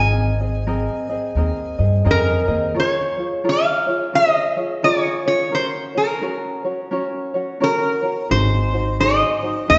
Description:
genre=Hawaiian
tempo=86 BPM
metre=4/4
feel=swing 62% on 8ths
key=Db major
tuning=A4 = 438 Hz
part: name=metal-body resonator slide guitar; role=melody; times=0.0-9.8 s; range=Bb4 to Ab5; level=-21 LUFS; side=equal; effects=none
part: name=tenor ukulele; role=accompaniment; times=0.0-9.8 s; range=C4 to Eb5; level=-26 LUFS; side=equal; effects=none
part: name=upright bass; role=bass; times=0.0-2.7, 8.3-9.8 s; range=Ab1 to G2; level=-22 LUFS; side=equal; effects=none
room=wet recital hall reverb, RT60 1.7 s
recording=recorded in a church or concert hall, nothing above 7.9 kHz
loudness=-20 LUFS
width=mono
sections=0.0-2.8 A section; 2.8-9.8 B section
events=none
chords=0.0 Abadd9; 2.8 Db6; 5.5 Gb; 8.3 Ab7

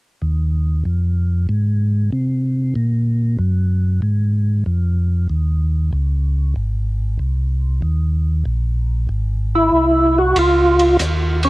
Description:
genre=soul jazz organ trio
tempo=95 BPM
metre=4/4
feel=swing 68% on 8ths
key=Db major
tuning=A4 = 440 Hz
part: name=mellow tonewheel organ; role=bass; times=0.2-11.5 s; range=Ab1 to C3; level=-17 LUFS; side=equal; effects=slow rotary speaker
part: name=percussive tonewheel organ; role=melody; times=9.6-11.5 s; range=Db4 to Gb4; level=-13 LUFS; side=equal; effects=slow rotary speaker, overdrive, chorus vibrato, analog delay
part: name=warm soul drum kit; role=drums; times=10.4-11.5 s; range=hi-hat, ride cymbal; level=-24 LUFS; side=right 1 dB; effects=cassette tape
room=small room ambience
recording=home recording on cassette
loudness=-15 LUFS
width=side -20 dB against mid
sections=0.2-10.4 A section; 10.4-11.5 B section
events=none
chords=0.2 Ebsus2; 1.5 Ab; 2.8 Gb; 4.0 Fm; 5.3 Dbsus2; 6.6 Ab; 7.8 Eb5; 9.1 Ab; 10.4 Dbadd9

